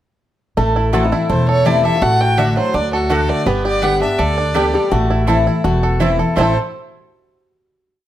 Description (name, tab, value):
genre	bluegrass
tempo	166 BPM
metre	4/4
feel	straight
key	A dorian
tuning	A4 = 444 Hz
part	lap resonator guitar	second line	0.6-6.5 s	D#4 to A4	-22 LUFS	left 1 dB	none
part	picked steel-string acoustic guitar	accompaniment	0.6-6.5 s	E2 to G4	-20 LUFS	left 3 dB	none
part	bluegrass banjo	arpeggios	0.6-6.6 s	F#3 to A4	-21 LUFS	right 3 dB	none
part	upright bass	bass	0.6-6.5 s	E1 to D2	-19 LUFS	equal	none
part	mandolin	stabs	0.9-6.5 s	A3 to A5	-24 LUFS	right 4 dB	none
part	rich fiddle	melody	1.3-6.5 s	F#4 to G5	-19 LUFS	right 1 dB	none
room	light reverb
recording	none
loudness	-13 LUFS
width	side -12 dB against mid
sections	0.6-6.4 A section; 6.4-7.8 final chord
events	none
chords	0.6 Am; 2.0 D/A; 3.5 G; 4.9 Am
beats	| 0.57 0.93 1.29 1.66 | 2.02 2.38 2.74 3.10 | 3.46 3.83 4.19 4.55 | 4.92 5.28 5.64 6.00 | 6.37